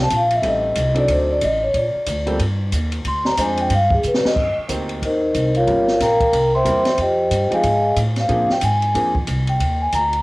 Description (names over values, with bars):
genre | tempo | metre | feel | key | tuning
jazz, small-group swing and bop | 183 BPM | 4/4 | swing 61% on 8ths | G minor, C minor from 4.4 s | A4 = 439 Hz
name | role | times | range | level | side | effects
vibraphone with soft mallets | melody | 0.0-10.2 s | Eb4 to C6 | -18 LUFS | equal | cassette tape
upright bass | bass | 0.0-10.2 s | G1 to D3 | -22 LUFS | equal | none
open jazz drum kit | drums | 0.1-10.2 s | crash cymbal, hi-hat, kick drum, ride cymbal, snare drum | -25 LUFS | equal | none
warm baby grand piano | accompaniment | 0.4-9.1 s | F3 to C5 | -25 LUFS | right 1 dB | cassette tape
room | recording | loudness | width
light reverb, studio ambience | home recording on cassette | -16 LUFS | side -22 dB against mid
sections
0.0-4.4 A section; 4.4-10.2 A section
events
vibraphone solo 0.0-10.2; drum fill 4.0-4.4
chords
0.4 Am7b5; 1.1 D7b9; 1.7 Gm; 3.1 Dm7b5; 3.7 G5; 4.4 Cm7; 5.7 Gm7b5; 6.3 C7; 7.0 Fm9; 8.3 Bb9; 9.6 Eb